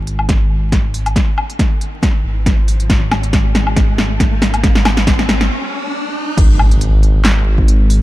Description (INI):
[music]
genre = deep dubstep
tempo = 138 BPM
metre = 4/4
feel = swing 55% on 16ths, half-time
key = unclear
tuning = A4 = 439 Hz
[part]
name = dark detuned saw bass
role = bass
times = 0.0-8.0 s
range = G#1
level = -15 LUFS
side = equal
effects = none
[part]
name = riser and impact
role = sound effects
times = 1.4-8.0 s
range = none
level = -22 LUFS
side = equal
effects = none
[part]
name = deep house drum kit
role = drums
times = 0.1-8.0 s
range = crash cymbal, handclaps, hi-hat, snare drum, woodblock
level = -18 LUFS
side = equal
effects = none
[part]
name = electronic kick drum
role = drums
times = 0.3-7.7 s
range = none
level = -15 LUFS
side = equal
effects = none
[sound]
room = little or no reverb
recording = dark, warm production, vinyl crackle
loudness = -12 LUFS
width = side -16 dB against mid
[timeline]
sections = 0.0-6.4 A section; 6.4-8.0 B section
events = build-up 0.0-6.4; drum fill 0.0-5.5; riser 1.4-6.4; stop 5.5-6.4; drop 6.4-8.0; impact 6.4-8.0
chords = none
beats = 0.29 0.72 | 1.16 1.59 2.03 2.46 | 2.90 3.33 3.77 4.20 | 4.64 5.07 5.51 5.94 | 6.38 6.81 7.25 7.68